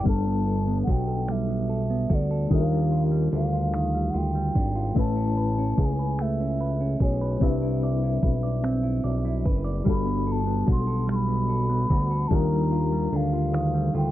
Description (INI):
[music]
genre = slow six-eight R&B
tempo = 49 BPM (dotted quarters)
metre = 6/8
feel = straight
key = G major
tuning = A4 = 440 Hz
[part]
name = mellow hollow alto ocarina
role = melody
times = 0.0-14.1 s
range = C#5 to C6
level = -32 LUFS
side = equal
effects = none
[part]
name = semi-hollow electric guitar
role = second line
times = 0.0-14.1 s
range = Eb3 to D5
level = -29 LUFS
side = right 5 dB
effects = none
[part]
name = overdriven reed electric piano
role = accompaniment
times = 0.0-14.1 s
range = F3 to B4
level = -31 LUFS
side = left 11 dB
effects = fast tremolo
[part]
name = fat analog bass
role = bass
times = 0.0-14.1 s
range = F#1 to Eb2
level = -26 LUFS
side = equal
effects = none
[part]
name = smooth R&B drum kit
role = drums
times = 0.1-14.1 s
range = finger snaps, hi-hat, kick drum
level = -24 LUFS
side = equal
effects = none
[sound]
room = little or no reverb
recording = dry, close 1970s-style studio recording, low-pass filter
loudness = -22 LUFS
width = side -14 dB against mid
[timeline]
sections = 0.1-14.1 A section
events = filter sweep 0.1-14.1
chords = 0.1 Gmaj9; 2.5 Ebmaj9; 5.0 Amaj9; 7.4 Cmaj9; 9.9 Gmaj9; 12.3 Ebmaj9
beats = | 0.07 1.29 | 2.51 3.74 | 4.96 6.19 | 7.41 8.64 | 9.86 11.09 | 12.31 13.54